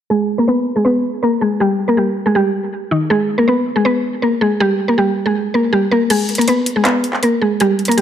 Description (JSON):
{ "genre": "hip hop, trap", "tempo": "160 BPM", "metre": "4/4", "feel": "half-time", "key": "G# harmonic minor", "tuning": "A4 = 440 Hz", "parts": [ { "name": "mallet-like synth pluck", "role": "melody", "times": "0.1-8.0 s", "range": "D#3 to B4", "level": "-14 LUFS", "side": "equal", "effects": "chorus, low-pass filter, tape echo" }, { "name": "trap drum kit", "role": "drums", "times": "6.1-8.0 s", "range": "crash cymbal, handclaps, hi-hat", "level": "-20 LUFS", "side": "equal", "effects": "none" } ], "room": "moderate lush hall reverb, RT60 1.9 s, digital ambience", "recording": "none", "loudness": "-13 LUFS", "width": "side -9 dB against mid", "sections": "0.1-6.1 A section; 6.1-8.0 B section", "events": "filter sweep on synth pluck 0.1-6.1; kick muted 6.1-8.0", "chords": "0.1 G#m; 1.6 D#; 3.1 G#madd9; 4.6 Gm; 6.1 G#m", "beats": "| 0.10 0.48 0.85 1.23 | 1.60 1.98 2.35 2.73 | 3.10 3.48 3.85 4.23 | 4.60 4.98 5.35 5.73 | 6.10 6.48 6.85 7.23 | 7.60 7.98" }